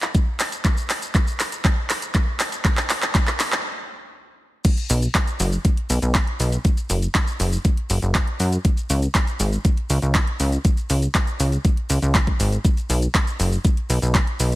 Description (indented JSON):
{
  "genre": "progressive house",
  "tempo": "120 BPM",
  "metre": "4/4",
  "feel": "straight",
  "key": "unclear",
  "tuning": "A4 = 439 Hz",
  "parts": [
    { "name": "pop drum kit", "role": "drums", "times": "0.0-14.6 s", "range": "crash cymbal, handclaps, hi-hat, shaker", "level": "-24 LUFS", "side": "equal", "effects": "overdrive" },
    { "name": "electronic kick drum", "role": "drums", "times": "0.1-14.2 s", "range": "none", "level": "-19 LUFS", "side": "equal", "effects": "overdrive" },
    { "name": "plucky analog bass", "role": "bass", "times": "4.9-14.6 s", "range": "F#1 to F#2", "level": "-19 LUFS", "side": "equal", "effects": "sidechain pumping" }
  ],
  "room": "little or no reverb",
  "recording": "none",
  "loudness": "-18 LUFS",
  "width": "side -18 dB against mid",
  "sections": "0.0-4.6 A section; 4.6-14.6 B section",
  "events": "build-up 0.0-4.6; drum fill 0.0-3.6; stop 3.6-4.6; drop 4.6-14.6",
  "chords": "none"
}